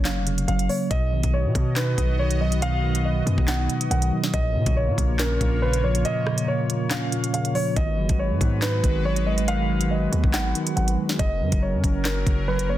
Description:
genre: hip hop, drill.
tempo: 140 BPM.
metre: 4/4.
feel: half-time.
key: Bb phrygian.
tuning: A4 = 445 Hz.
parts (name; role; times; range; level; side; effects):
dark baby grand piano; melody; 0.0-12.8 s; Bb4 to F#5; -28 LUFS; right 1 dB; low-pass filter.
mellow tine electric piano; accompaniment; 0.0-12.8 s; Bb2 to Db5; -26 LUFS; right 1 dB; medium stereo tremolo, low-pass filter.
hard-hitting 808-style bass; bass; 0.0-12.8 s; F1 to B2; -24 LUFS; equal; none.
drill drum kit; drums; 0.1-12.7 s; handclaps, hi-hat, kick drum, rim click, snare drum; -25 LUFS; equal; none.
sweeping resonant pad; sustained chords; 0.9-12.8 s; Gb3 to D#5; -32 LUFS; left 1 dB; chorus.
room: little or no reverb.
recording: dense, heavily limited modern master.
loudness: -20 LUFS.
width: side -13 dB against mid.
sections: 0.0-12.8 A section.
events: break 6.1-7.8.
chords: 0.0 Gb; 0.9 B; 4.3 Bbm; 7.8 Abm7; 11.2 Gb.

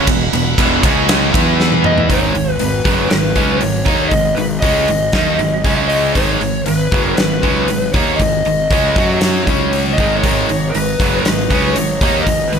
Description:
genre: hard rock.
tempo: 118 BPM.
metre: 4/4.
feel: straight.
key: G# minor.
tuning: A4 = 440 Hz.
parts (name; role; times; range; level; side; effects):
overdriven tonewheel organ; sustained chords; 0.0-2.1, 10.2-12.6 s; G#3 to A#5; -27 LUFS; left 1 dB; slow rotary speaker.
cranked stack guitar; riff; 0.0-12.6 s; E2 to F#4; -19 LUFS; right 14 dB; overdrive.
distorted electric guitar; riff; 0.0-12.6 s; E2 to F#4; -20 LUFS; left 12 dB; distortion.
fuzz fingered electric bass; bass; 0.0-12.6 s; E1 to F#2; -21 LUFS; equal; overdrive.
huge arena drum kit; drums; 0.1-12.6 s; hi-hat, kick drum, ride cymbal, snare drum, toms; -17 LUFS; equal; none.
lead guitar through a small cranked amp; melody; 1.9-12.6 s; B4 to D#5; -19 LUFS; left 2 dB; overdrive.
room: light reverb.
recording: none.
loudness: -12 LUFS.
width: side -7 dB against mid.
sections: 0.0-2.1 A section; 2.1-12.6 B section.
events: drum fill 1.6-2.1.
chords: 0.0 E5; 0.8 C#5; 1.3 E5; 2.1 G#m; 5.7 C#5; 6.2 G#m; 9.0 F#5; 9.5 C#5; 10.0 G#m.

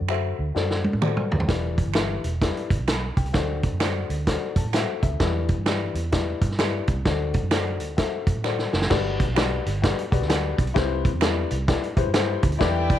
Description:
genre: uptempo 1960s-style soul.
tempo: 129 BPM.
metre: 4/4.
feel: swing 62% on 8ths.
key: unclear.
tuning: A4 = 443 Hz.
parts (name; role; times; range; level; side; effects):
dark upright piano; accompaniment; 0.0-13.0 s; G2 to B5; -28 LUFS; left 10 dB; none.
vintage muted fingered electric bass; bass; 0.0-12.9 s; E1 to A2; -27 LUFS; right 1 dB; none.
finger snaps; percussion; 0.1-12.3 s; none; -34 LUFS; right 14 dB; none.
vintage drum kit; drums; 0.6-13.0 s; crash cymbal, hi-hat, kick drum, snare drum, toms; -24 LUFS; right 1 dB; none.
warm studio violin section; second line; 12.6-13.0 s; E4 to G5; -27 LUFS; equal; none.
room: light reverb.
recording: 1960s-style stereo with parts hard left and right.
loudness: -21 LUFS.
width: side -11 dB against mid.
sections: 0.0-8.9 A section; 8.9-13.0 B section.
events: drum fill 0.6-1.5, 8.4-8.9; upright piano fill 4.3-5.2.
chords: 0.0 D7; 1.5 Em7; 3.3 D7; 5.2 Em7; 7.1 D7; 8.9 Gmaj7; 10.8 Cmaj7.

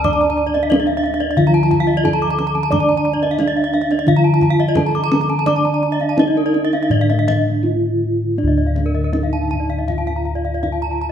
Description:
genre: Balinese gamelan.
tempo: 80-90 BPM.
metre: 4/4.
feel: straight.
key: D pelog.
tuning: A4 = 443 Hz.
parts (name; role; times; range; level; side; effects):
gamelan-type bronze metallophone; melody; 0.0-11.1 s; D4 to D5; -20 LUFS; right 2 dB; none.
gamelan-type bronze metallophone; accompaniment; 0.0-8.4 s; D3 to D4; -24 LUFS; right 2 dB; none.
gamelan-type bronze metallophone; arpeggios; 0.0-11.1 s; Bb4-40c to D6; -23 LUFS; left 6 dB; none.
gamelan-type bronze metallophone; arpeggios; 0.0-11.1 s; Bb4-40c to Bb5-40c; -25 LUFS; right 5 dB; none.
gamelan-type bossed gongs; bass; 0.0-11.1 s; D2 to D5; -20 LUFS; left 1 dB; none.
kendang; percussion; 0.0-10.8 s; none; -24 LUFS; left 1 dB; none.
room: moderate scoring stage reverb, RT60 1.7 s.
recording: none.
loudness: -14 LUFS.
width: side -8 dB against mid.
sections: 0.0-8.4 A section; 8.4-11.1 B section.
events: break 7.3-8.4.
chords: none.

